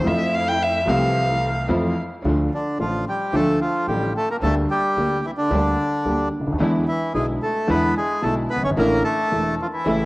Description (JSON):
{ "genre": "tango", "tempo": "110 BPM", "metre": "4/4", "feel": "rubato", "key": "D minor", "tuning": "A4 = 440 Hz", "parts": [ { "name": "rich violin", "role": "second line", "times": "0.0-2.0 s", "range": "E5 to G5", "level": "-22 LUFS", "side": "left 1 dB", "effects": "cassette tape" }, { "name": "warm baby grand piano", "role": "accompaniment", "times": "0.0-10.1 s", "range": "E1 to F5", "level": "-23 LUFS", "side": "equal", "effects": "cassette tape" }, { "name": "dark studio string section", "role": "stabs", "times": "0.0-10.1 s", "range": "E3 to E4", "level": "-30 LUFS", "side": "right 2 dB", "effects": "cassette tape" }, { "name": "upright bass", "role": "bass", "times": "0.0-10.1 s", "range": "E1 to F2", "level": "-28 LUFS", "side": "right 1 dB", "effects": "none" }, { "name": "bandoneon", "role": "melody", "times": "2.5-10.1 s", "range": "D3 to C#5", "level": "-22 LUFS", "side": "equal", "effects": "cassette tape, tape echo" } ], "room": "wet spring reverb, RT60 2.7 s", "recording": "home recording on cassette", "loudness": "-19 LUFS", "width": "side -20 dB against mid", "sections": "0.0-2.2 A section; 2.2-10.1 B section", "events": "violin solo 0.0-2.2", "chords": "0.0 Fmaj7; 2.2 Dm; 4.4 Gm/D; 6.6 E7; 8.8 Asus4" }